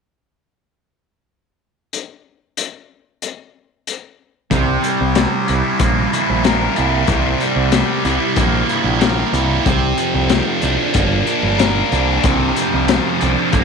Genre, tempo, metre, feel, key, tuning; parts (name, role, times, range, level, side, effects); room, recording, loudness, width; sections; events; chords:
psychedelic rock; 93 BPM; 4/4; straight; C mixolydian; A4 = 439 Hz
crunchy breakbeat drum kit; drums; 1.9-13.6 s; hi-hat, kick drum, snare drum; -19 LUFS; left 5 dB
thick fuzz guitar; riff; 4.5-13.6 s; C3 to Bb4; -16 LUFS; right 1 dB; distortion, phaser
growling picked electric bass; bass; 4.5-13.6 s; G1 to C2; -19 LUFS; right 1 dB; overdrive
studio reverb; 1960s-style stereo; -14 LUFS; side -5 dB against mid
1.9-4.5 A section; 4.5-13.6 B section
1.9 N.C.; 4.5 C7; 9.7 Bbadd9